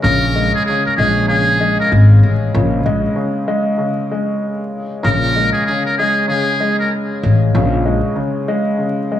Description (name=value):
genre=hip hop, boom-bap hip-hop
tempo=96 BPM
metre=4/4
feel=swing 61% on 16ths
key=Bb minor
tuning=A4 = 440 Hz
part: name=trumpet with metal mute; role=melody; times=0.0-6.9 s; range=Ab4 to Bb4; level=-18 LUFS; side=equal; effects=high-pass filter, low-pass filter, cassette tape, tape echo
part: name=warm upright piano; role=accompaniment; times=0.0-9.2 s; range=Db3 to Ab3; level=-18 LUFS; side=left 1 dB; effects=high-pass filter, low-pass filter, cassette tape
part: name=upright bass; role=bass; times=0.0-8.0 s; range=Ab1 to Bb1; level=-14 LUFS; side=equal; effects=none
room=light reverb, small room ambience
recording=home recording on cassette, vinyl crackle, small room reverb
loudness=-13 LUFS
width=side -11 dB against mid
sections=0.0-5.0 A section; 5.0-9.2 B section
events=none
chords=0.0 Bbm7